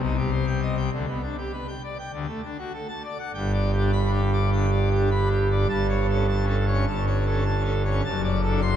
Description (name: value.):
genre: classical, organ toccata.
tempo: 102 BPM.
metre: 4/4.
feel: straight.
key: G major.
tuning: A4 = 441 Hz.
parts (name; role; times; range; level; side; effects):
pipe organ, full organ; solo; 0.0-8.8 s; F#1 to C6; -22 LUFS; equal; none.
room: wet cathedral reverb, RT60 4.2 s.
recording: dark, warm production.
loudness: -22 LUFS.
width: side -10 dB against mid.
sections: 0.0-3.3 A section; 3.3-8.8 B section.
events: none.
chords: 0.0 Cm; 0.9 G/D; 2.1 D; 3.3 G; 5.7 A7/G; 8.0 D7/F#.